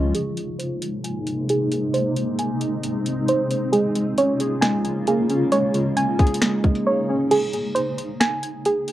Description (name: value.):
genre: hip hop, trap.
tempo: 134 BPM.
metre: 4/4.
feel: half-time.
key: Ab major.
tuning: A4 = 439 Hz.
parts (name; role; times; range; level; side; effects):
warbly lo-fi synth keys; accompaniment; 0.0-0.2, 3.7-7.3 s; F3 to Ab4; -23 LUFS; equal; chorus, low-pass filter.
granular cloud pad; sustained chords; 0.0-7.3 s; C3 to F4; -25 LUFS; left 1 dB; built-in reverb, low-pass filter.
soft round pluck; arpeggios; 0.0-8.9 s; F4 to Ab5; -23 LUFS; right 2 dB; chorus, low-pass filter, ping-pong delay.
trap drum kit; drums; 0.1-8.9 s; crash cymbal, finger snaps, hi-hat, kick drum, snare drum; -23 LUFS; equal; none.
room: light reverb, digital ambience.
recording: worn, warbling old tape, cassette tape, warbly pitch drift.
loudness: -19 LUFS.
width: side -13 dB against mid.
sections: 0.1-7.3 A section; 7.3-8.9 B section.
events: filter sweep 0.1-7.3; break 7.3-8.9.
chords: 0.1 Abadd9; 3.7 Bbm7; 7.3 Ab.